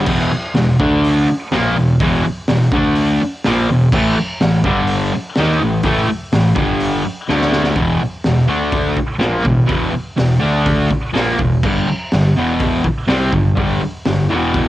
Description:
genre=garage rock duo or trio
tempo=124 BPM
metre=4/4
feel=straight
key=E minor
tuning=A4 = 440 Hz
part: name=fuzz guitar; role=riff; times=0.0-14.7 s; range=E2 to D#4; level=-14 LUFS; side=equal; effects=distortion, cassette tape
part: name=growling picked electric bass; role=bass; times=0.0-14.7 s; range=E1 to D#2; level=-24 LUFS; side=equal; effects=overdrive
part: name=raw garage drum kit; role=drums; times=0.1-14.7 s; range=crash cymbal, hi-hat, kick drum, snare drum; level=-21 LUFS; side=equal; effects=cassette tape
room=little or no reverb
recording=home recording on cassette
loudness=-13 LUFS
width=side -15 dB against mid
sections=0.1-7.8 A section; 7.8-14.7 B section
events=drum fill 7.3-7.8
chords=0.1 E5; 0.8 D5; 1.3 E5; 2.7 D5; 3.2 E5; 3.9 A5; 4.6 G5; 5.1 A5; 6.6 G5; 7.0 N.C.; 7.3 D5; 7.8 E5; 8.5 D5; 9.0 E5; 10.4 D5; 10.9 E5; 11.6 G5; 12.4 E5; 12.8 G5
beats=| 0.07 0.55 1.03 1.52 | 2.00 2.48 2.96 3.44 | 3.92 4.40 4.88 5.36 | 5.84 6.33 6.81 7.29 | 7.77 8.25 8.74 9.22 | 9.70 10.19 10.67 11.15 | 11.64 12.12 12.61 13.09 | 13.57 14.06 14.55

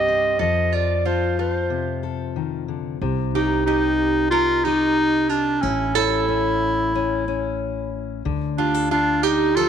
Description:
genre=acoustic folk duo or small band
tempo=92 BPM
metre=4/4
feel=straight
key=C dorian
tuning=A4 = 440 Hz
part: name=warm clarinet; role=melody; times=0.0-9.7 s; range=C#4 to Eb5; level=-20 LUFS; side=equal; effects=none
part: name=lap resonator guitar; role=second line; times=0.0-9.7 s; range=E4 to Bb4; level=-25 LUFS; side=right 11 dB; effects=none
part: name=fingerpicked steel-string acoustic guitar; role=accompaniment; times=0.0-9.7 s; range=G2 to Eb5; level=-27 LUFS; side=left 10 dB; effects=none
part: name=upright bass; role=bass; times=0.0-9.7 s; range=A1 to F2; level=-28 LUFS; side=right 1 dB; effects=none
room=moderate echo chamber reverb, RT60 2.6 s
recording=1960s-style stereo with parts hard left and right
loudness=-19 LUFS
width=side -8 dB against mid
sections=0.0-3.0 A section; 3.0-9.7 B section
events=none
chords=0.4 F; 3.0 Cm7; 5.6 A; 8.3 Dm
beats=| 0.40 1.06 1.71 2.37 | 3.02 3.68 4.33 4.99 | 5.64 6.29 6.95 7.60 | 8.26 8.91 9.56

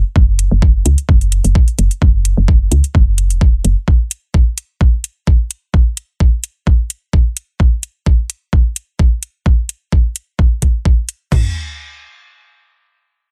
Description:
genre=minimal techno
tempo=129 BPM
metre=4/4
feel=swing 53% on 16ths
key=unclear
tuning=A4 = 440 Hz
part: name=woody FM bass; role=bass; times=0.0-3.7 s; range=E1 to C#2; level=-16 LUFS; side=equal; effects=sidechain pumping
part: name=garage drum kit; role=drums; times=0.2-11.4 s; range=crash cymbal, kick drum, toms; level=-14 LUFS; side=equal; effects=none
part: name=electronic hi-hat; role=drums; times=0.4-11.2 s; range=none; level=-23 LUFS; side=equal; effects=none
room=little or no reverb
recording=none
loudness=-15 LUFS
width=mono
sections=0.0-11.3 A section; 11.3-13.3 B section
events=filter sweep on FM bass 0.0-3.9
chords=none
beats=| 0.16 0.62 1.09 1.55 | 2.02 2.48 2.95 3.41 | 3.88 4.34 4.81 5.27 | 5.74 6.20 6.67 7.13 | 7.60 8.06 8.53 8.99 | 9.46 9.92 10.39 10.85 | 11.32

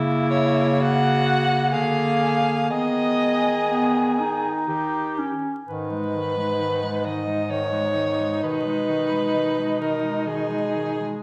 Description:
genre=classical, lyrical piece for single-reed quartet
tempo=58-68 BPM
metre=3/4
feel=rubato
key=G# minor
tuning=A4 = 441 Hz
part: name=clear alto saxophone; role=second line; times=0.0-11.2 s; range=D#4 to G#4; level=-28 LUFS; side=equal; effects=none
part: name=warm clarinet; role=accompaniment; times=0.0-11.2 s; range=D#3 to D#4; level=-29 LUFS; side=equal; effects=none
part: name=bright bass clarinet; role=bass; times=0.0-11.2 s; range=G#2 to D#3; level=-30 LUFS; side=equal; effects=none
part: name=warm soprano saxophone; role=melody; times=0.3-11.2 s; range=G#4 to F#5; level=-28 LUFS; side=equal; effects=none
room=wet recital hall reverb, RT60 1.2 s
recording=vinyl crackle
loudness=-23 LUFS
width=mono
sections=0.0-5.7 A section; 5.7-11.2 B section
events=none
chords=0.0 A#dim/C#; 1.7 A#7/D; 2.7 G#m/D#; 4.7 D#; 5.7 G#m; 8.4 G#m/B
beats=0.81 1.74 | 2.71 3.71 4.69 | 5.68 6.60 7.50 | 8.43 9.35 10.26

